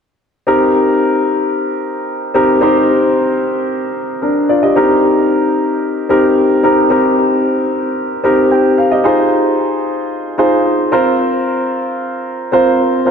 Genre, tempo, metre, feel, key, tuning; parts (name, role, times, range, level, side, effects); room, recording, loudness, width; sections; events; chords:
pop; 112 BPM; 4/4; straight; Eb major; A4 = 440 Hz
warm grand piano; solo; 0.5-13.1 s; C4 to G5; -11 LUFS; equal; ping-pong delay
wet lush hall reverb, RT60 2.6 s; -11 LUFS; side -6 dB against mid
0.5-4.8 A section; 4.8-13.1 B section
0.5 Eb6; 9.0 Ab6; 10.9 Bbsus2